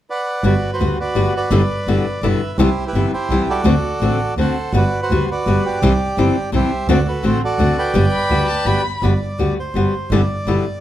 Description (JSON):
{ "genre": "tango", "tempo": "168 BPM", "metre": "3/4", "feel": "rubato", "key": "G major", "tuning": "A4 = 440 Hz", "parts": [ { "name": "bandoneon", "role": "melody", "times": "0.1-10.8 s", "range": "E4 to G5", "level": "-21 LUFS", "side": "right 2 dB", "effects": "none" }, { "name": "flamenco guitar", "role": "accompaniment", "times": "0.4-10.6 s", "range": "B2 to F#4", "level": "-20 LUFS", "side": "left 4 dB", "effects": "none" }, { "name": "clear double bass", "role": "bass", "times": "0.4-10.6 s", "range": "G1 to D2", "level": "-19 LUFS", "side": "right 1 dB", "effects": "none" }, { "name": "warm violin", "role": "second line", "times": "8.1-9.0 s", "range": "A5 to B5", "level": "-23 LUFS", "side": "left 1 dB", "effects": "none" } ], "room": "light reverb", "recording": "dark, warm production", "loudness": "-15 LUFS", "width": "side -12 dB against mid", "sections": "0.4-9.0 A section; 9.0-10.8 A section", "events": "none", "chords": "0.4 Gmaj7; 1.5 Em7/G; 2.6 Cmaj7; 3.6 D7; 4.7 Gmaj7; 5.8 C; 6.9 D7; 7.9 Gmaj7; 10.1 Em7/G", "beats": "0.09 | 0.45 0.81 1.17 | 1.52 1.88 2.23 | 2.59 2.95 3.30 | 3.65 4.01 4.37 | 4.74 5.10 5.46 | 5.82 6.18 6.53 | 6.89 7.24 7.59 | 7.95 8.30 8.67 | 9.03 9.39 9.76 | 10.11 10.47" }